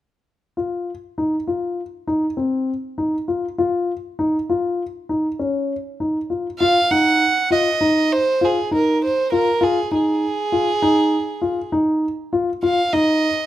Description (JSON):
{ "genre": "contemporary instrumental, chamber music in an uneven meter", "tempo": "100 BPM", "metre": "5/4", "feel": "straight", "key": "unclear", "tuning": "A4 = 440 Hz", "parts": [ { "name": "dark concert grand piano", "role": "arpeggios", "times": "0.6-13.3 s", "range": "C4 to F4", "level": "-20 LUFS", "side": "left 1 dB", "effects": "none" }, { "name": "warm violin", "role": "melody", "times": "6.6-13.5 s", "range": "Ab4 to Gb5", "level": "-19 LUFS", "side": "right 2 dB", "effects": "none" } ], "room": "light reverb", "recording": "close, detailed microphones", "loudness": "-18 LUFS", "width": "side -13 dB against mid", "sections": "0.6-6.6 A section; 6.6-13.5 B section", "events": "none", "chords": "0.6 Cmadd11; 3.6 Dbadd9; 6.6 Ebsus24" }